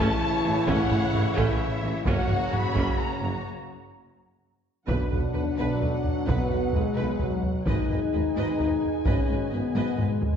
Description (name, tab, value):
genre	cinematic, epic orchestral film score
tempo	130 BPM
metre	3/4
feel	straight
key	unclear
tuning	A4 = 440 Hz
part	dark symphonic violin section	melody	0.0-10.4 s	E5 to B5	-34 LUFS	left 2 dB	none
part	rich symphonic violin section	second line	0.0-10.1 s	E4 to D#5	-37 LUFS	left 2 dB	none
part	rich chamber viola section	accompaniment	0.0-10.1 s	E3 to B4	-34 LUFS	right 2 dB	none
part	clear trombone section	sustained chords	0.0-10.4 s	B2 to G#3	-32 LUFS	right 3 dB	none
part	mellow French horn section	sustained chords	0.0-10.4 s	F#3 to E4	-30 LUFS	left 4 dB	none
part	clear tuba	bass	0.0-10.1 s	F#1 to B1	-35 LUFS	right 2 dB	none
part	dark symphonic cello section	bass	0.0-10.1 s	F#2 to B2	-33 LUFS	right 2 dB	none
part	warm symphonic double bass section	bass	0.0-10.1 s	F#1 to B1	-35 LUFS	right 2 dB	none
part	taiko ensemble	drums	0.0-10.4 s	none	-28 LUFS	equal	none
room	wet scoring stage reverb, RT60 1.5 s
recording	heard from further back in the room, nothing above 8.0 kHz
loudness	-23 LUFS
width	side -8 dB against mid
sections	0.0-4.9 A section; 4.9-10.4 B section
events	break 3.5-4.9; drum fill 4.2-4.9, 9.7-10.4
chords	0.0 A; 2.1 F#; 3.5 N.C.; 4.9 Bm; 7.7 G#m